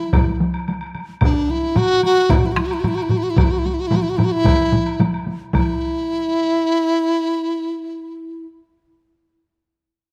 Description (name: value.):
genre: japanese traditional, taiko drum ensemble.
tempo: 111 BPM.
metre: 4/4.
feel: straight.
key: unclear.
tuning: A4 = 441 Hz.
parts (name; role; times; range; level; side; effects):
mellow hollow large dizi; melody; 0.0-8.5 s; D4 to F#4; -21 LUFS; equal; none.
taiko ensemble; percussion; 0.0-5.8 s; none; -29 LUFS; equal; none.
solo taiko drums; percussion; 0.1-5.8 s; none; -22 LUFS; equal; none.
taiko ensemble; percussion; 0.1-6.0 s; none; -26 LUFS; equal; none.
woodblock; percussion; 0.1-5.8 s; none; -34 LUFS; equal; none.
taiko ensemble; percussion; 1.2-6.0 s; none; -24 LUFS; equal; none.
room: moderate concert hall reverb, RT60 2.0 s.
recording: close, detailed microphones.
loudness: -19 LUFS.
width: mono.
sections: 0.0-5.5 A section; 5.5-7.7 B section.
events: none.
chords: none.